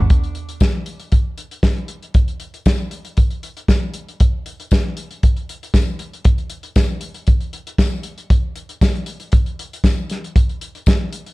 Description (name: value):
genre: disco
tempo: 117 BPM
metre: 4/4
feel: straight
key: none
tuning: none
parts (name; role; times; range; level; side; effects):
- warm soul drum kit; drums; 0.1-11.3 s; hi-hat, kick drum, snare drum; -15 LUFS; equal; none
- tambourine; percussion; 0.6-11.0 s; none; -36 LUFS; left 9 dB; none
room: light reverb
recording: dark, warm production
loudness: -17 LUFS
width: side -21 dB against mid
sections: 0.1-11.3 A section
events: none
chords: none